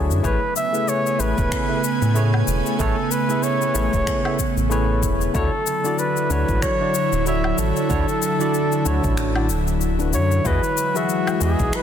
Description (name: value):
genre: sunset chillout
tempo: 94 BPM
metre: 4/4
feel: swing 57% on 16ths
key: A major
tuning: A4 = 438 Hz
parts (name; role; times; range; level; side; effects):
- mellow flugelhorn; melody; 0.0-11.8 s; F#4 to E5; -24 LUFS; equal; ping-pong delay
- barky tine electric piano; accompaniment; 0.0-11.8 s; D3 to E5; -25 LUFS; moving between left 6 dB and right 6 dB; auto-pan, ping-pong delay
- airy breathy pad; sustained chords; 0.0-11.8 s; C#3 to G#5; -25 LUFS; equal; chorus
- round analog bass; bass; 0.0-11.7 s; D1 to A2; -21 LUFS; equal; none
- electronic cabasa, finger snaps and woodblock; drums; 0.1-11.8 s; none; -30 LUFS; left 6 dB; soft clipping on snare
- electronic kick drum; drums; 0.2-11.7 s; none; -26 LUFS; equal; none
room: moderate lush hall reverb, RT60 2.9 s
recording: dense, heavily limited modern master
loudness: -18 LUFS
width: side -9 dB against mid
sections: 0.0-10.5 A section; 10.5-11.8 B section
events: kick drops out 9.2-10.5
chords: 0.2 Amaj9; 5.3 Dmaj9; 10.5 Emaj9